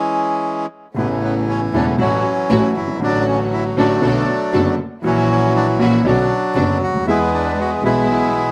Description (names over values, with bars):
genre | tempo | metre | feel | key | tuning
tango | 118 BPM | 4/4 | rubato | A major | A4 = 441 Hz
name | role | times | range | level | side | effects
bandoneon | melody | 0.0-8.5 s | E3 to F#4 | -21 LUFS | equal | slapback echo
warm concert grand piano | accompaniment | 0.9-8.5 s | E1 to G#4 | -22 LUFS | equal | none
warm symphonic string section | stabs | 1.0-8.5 s | G#3 to A4 | -27 LUFS | equal | none
clear double bass | bass | 1.0-8.5 s | E1 to E2 | -25 LUFS | equal | none
room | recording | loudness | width
little or no reverb | recorded outdoors, with no room sound | -17 LUFS | mono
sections
1.0-8.5 A section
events
stop 0.0-1.0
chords
0.0 E6; 1.0 Aadd9; 2.0 F#m7/A; 3.0 Dmaj7/A; 4.0 Bm7; 5.0 F#7/A#; 6.0 Bmadd9; 7.1 E